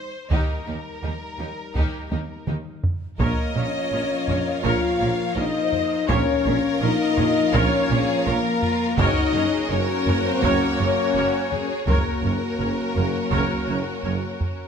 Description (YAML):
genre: cinematic, epic orchestral film score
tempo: 83 BPM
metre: 4/4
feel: straight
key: Bb minor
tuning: A4 = 441 Hz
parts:
  - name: rich symphonic violin section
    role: melody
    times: 0.0-14.4 s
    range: Bb4 to F5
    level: -33 LUFS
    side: left 1 dB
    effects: none
  - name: dark French horn section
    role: sustained chords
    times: 0.0-14.4 s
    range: G3 to F4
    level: -26 LUFS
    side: left 7 dB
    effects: none
  - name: rich symphonic violin section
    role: second line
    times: 0.3-14.4 s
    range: Eb4 to Eb5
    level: -32 LUFS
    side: left 2 dB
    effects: none
  - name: clear symphonic viola section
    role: accompaniment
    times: 0.3-14.1 s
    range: Bb3 to Db5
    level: -30 LUFS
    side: right 1 dB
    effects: none
  - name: clear symphonic double bass section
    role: bass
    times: 0.3-14.1 s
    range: Gb1 to Eb2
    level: -29 LUFS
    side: right 4 dB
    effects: none
  - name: warm symphonic cello section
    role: bass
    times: 0.3-14.1 s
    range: Eb2 to Bb2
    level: -29 LUFS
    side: right 3 dB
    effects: none
  - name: taiko ensemble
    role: drums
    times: 0.3-14.7 s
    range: none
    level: -26 LUFS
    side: right 1 dB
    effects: none
  - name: mellow large flute ensemble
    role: second line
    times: 3.2-14.4 s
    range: Bb4 to F5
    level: -29 LUFS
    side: left 3 dB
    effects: none
  - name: rich studio string section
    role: sustained chords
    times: 3.2-14.7 s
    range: Bb3 to F5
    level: -30 LUFS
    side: left 1 dB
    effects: none
  - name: warm trombone section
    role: sustained chords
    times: 3.2-14.4 s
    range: F3 to Bb3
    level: -31 LUFS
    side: right 6 dB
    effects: none
  - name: mellow tuba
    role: bass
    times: 3.2-14.2 s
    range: Gb1 to Bb1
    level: -31 LUFS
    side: right 5 dB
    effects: none
room: moderate scoring stage reverb, RT60 1.6 s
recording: close, detailed microphones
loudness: -20 LUFS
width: side -7 dB against mid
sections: 0.0-3.2 A section; 3.2-14.7 A section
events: drum fill 2.1-3.2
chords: 0.0 Eb; 3.2 Bbm; 9.0 Gb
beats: | 0.31 1.04 1.76 2.48 | 3.21 3.93 4.65 5.37 | 6.10 6.82 7.54 8.27 | 8.99 9.71 10.44 11.16 | 11.88 12.60 13.33 14.05